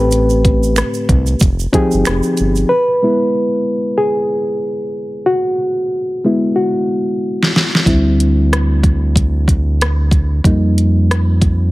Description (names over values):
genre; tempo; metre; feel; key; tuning
R&B, neo-soul; 93 BPM; 4/4; swing 57% on 16ths; unclear; A4 = 440 Hz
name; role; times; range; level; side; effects
reed electric piano; accompaniment; 0.0-11.7 s; A2 to B4; -15 LUFS; equal; none
round analog bass; bass; 0.0-2.6, 7.9-11.7 s; F1 to F2; -14 LUFS; equal; none
pop drum kit; drums; 0.1-2.7, 7.4-11.6 s; hi-hat, kick drum, rim click, snare drum; -15 LUFS; equal; overdrive
tube shaker and finger snaps; percussion; 0.1-2.7 s; none; -26 LUFS; right 9 dB; none
room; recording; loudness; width
light reverb; heavily compressed radio sound; -12 LUFS; side -19 dB against mid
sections
0.0-2.7 A section; 2.7-11.7 B section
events
reed electric piano solo 2.7-11.7; drum fill 7.2-7.9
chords
0.0 Am9; 1.4 Fm9; 2.7 F#9sus4; 7.9 D9sus4; 10.4 F9sus4